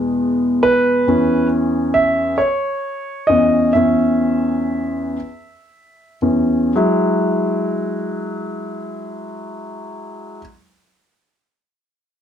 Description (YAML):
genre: pop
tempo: 37-46 BPM (dotted quarters)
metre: 6/8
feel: straight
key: E major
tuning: A4 = 438 Hz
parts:
  - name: warm concert grand piano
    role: solo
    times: 0.0-10.4 s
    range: E2 to E5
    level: -16 LUFS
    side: equal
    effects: slapback echo
room: moderate small room reverb, RT60 0.5 s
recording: dark, warm production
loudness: -15 LUFS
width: side -9 dB against mid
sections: 0.0-6.8 A section; 6.8-10.0 B section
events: grand piano solo 0.0-6.8; slowing down 1.1-6.8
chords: 0.0 E; 1.1 C#m/E; 6.8 Eadd9